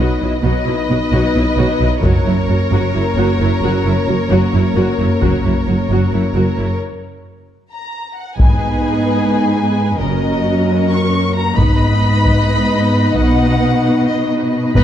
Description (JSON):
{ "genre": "cinematic, epic orchestral film score", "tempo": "264 BPM (eighths)", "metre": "7/8", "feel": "straight", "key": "unclear", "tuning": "A4 = 440 Hz", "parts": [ { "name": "warm symphonic violin section", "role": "second line", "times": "0.0-14.8 s", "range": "G#4 to D#5", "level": "-22 LUFS", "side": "left 3 dB", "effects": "none" }, { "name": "warm symphonic viola section", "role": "accompaniment", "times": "0.0-14.8 s", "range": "F#3 to F#4", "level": "-21 LUFS", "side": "right 1 dB", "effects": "none" }, { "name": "dark French horn section", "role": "sustained chords", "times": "0.0-14.8 s", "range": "A#3 to D#4", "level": "-21 LUFS", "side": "left 3 dB", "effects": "none" }, { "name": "dark symphonic cello section", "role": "bass", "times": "0.0-14.8 s", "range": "F#2 to B2", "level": "-18 LUFS", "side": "right 1 dB", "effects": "none" }, { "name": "rich symphonic double bass section", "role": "bass", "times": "0.0-14.8 s", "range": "F#1 to B1", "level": "-19 LUFS", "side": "right 2 dB", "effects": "none" }, { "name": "taiko ensemble", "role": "drums", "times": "2.0-14.8 s", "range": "none", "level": "-16 LUFS", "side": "equal", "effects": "none" }, { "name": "dark symphonic violin section", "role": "melody", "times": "7.7-14.8 s", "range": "D#5 to C#6", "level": "-21 LUFS", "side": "left 2 dB", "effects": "none" } ], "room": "moderate scoring stage reverb, RT60 1.6 s", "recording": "dark, warm production", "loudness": "-13 LUFS", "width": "side -10 dB against mid", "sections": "0.0-8.4 A section; 8.4-14.8 B section", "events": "build-up 0.0-8.4; break 6.8-8.4", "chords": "0.0 B; 2.0 F#; 8.4 G#m; 10.0 F#; 11.6 G#m; 13.2 B", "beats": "0.21 | 0.44 0.67 0.89 1.12 1.35 1.58 1.80 | 2.03 2.26 2.48 2.71 2.94 3.17 3.39 | 3.62 3.85 4.08 4.30 4.53 4.76 4.99 | 5.21 5.44 5.67 5.89 6.12 6.35 6.58 | 6.80 7.03 7.26 7.49 7.71 7.94 8.17 | 8.39 8.62 8.85 9.08 9.30 9.53 9.76 | 9.98 10.21 10.44 10.67 10.89 11.12 11.35 | 11.58 11.80 12.03 12.26 12.48 12.71 12.94 | 13.17 13.39 13.62 13.85 14.08 14.30 14.53 | 14.76" }